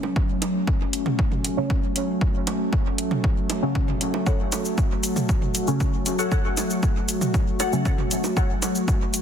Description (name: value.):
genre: dub techno.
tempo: 117 BPM.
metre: 4/4.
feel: straight.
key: F# minor.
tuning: A4 = 440 Hz.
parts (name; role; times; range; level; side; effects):
warbly tape-like pad; sustained chords; 0.0-9.2 s; F#3 to F#4; -26 LUFS; equal; chorus, built-in reverb, sidechain pumping.
electronic bongos and toms; percussion; 0.0-8.7 s; none; -32 LUFS; right 4 dB; sidechain pumping on perc, sidechain pumping on toms, dub echo.
electronic kick drum; drums; 0.2-9.0 s; none; -23 LUFS; equal; none.
electronic hi-hat and cabasa; drums; 0.4-9.2 s; none; -28 LUFS; left 1 dB; none.
deep mellow chord stab; stabs; 1.6-7.9 s; C#3 to C#4; -29 LUFS; equal; chorus, phaser, sidechain pumping, dub echo.
filtered dub chord stab; riff; 4.3-8.5 s; A4 to F#5; -31 LUFS; left 4 dB; phaser, lush chorus, sidechain pumping, dub echo.
room: light reverb.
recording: dense, heavily limited modern master.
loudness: -21 LUFS.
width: side -8 dB against mid.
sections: 0.0-9.2 A section.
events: none.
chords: 0.0 F#m.